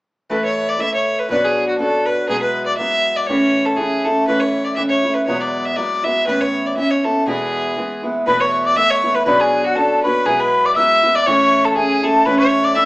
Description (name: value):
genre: celtic folk, Celtic polka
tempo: 120 BPM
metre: 2/4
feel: swing 55% on 8ths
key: E mixolydian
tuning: A4 = 439 Hz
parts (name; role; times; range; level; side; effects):
- clear fiddle; melody; 0.3-12.9 s; F#4 to E5; -18 LUFS; equal; none
- fingerpicked steel-string acoustic guitar; accompaniment; 0.3-12.9 s; E2 to C#5; -19 LUFS; equal; none
- breathy mid whistle; second line; 8.3-12.9 s; F#5 to E6; -16 LUFS; left 1 dB; none
room: wet studio reverb, RT60 0.6 s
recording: small speaker sound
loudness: -14 LUFS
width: side -20 dB against mid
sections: 0.3-8.3 A section; 8.3-12.9 A section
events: none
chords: 0.3 Esus4; 1.3 Bmadd9; 2.3 Eadd9/B; 3.3 A; 5.3 Eadd9; 6.3 Aadd9; 7.3 E; 8.3 Esus4; 9.3 Bmadd9; 10.3 Eadd9/B; 11.3 A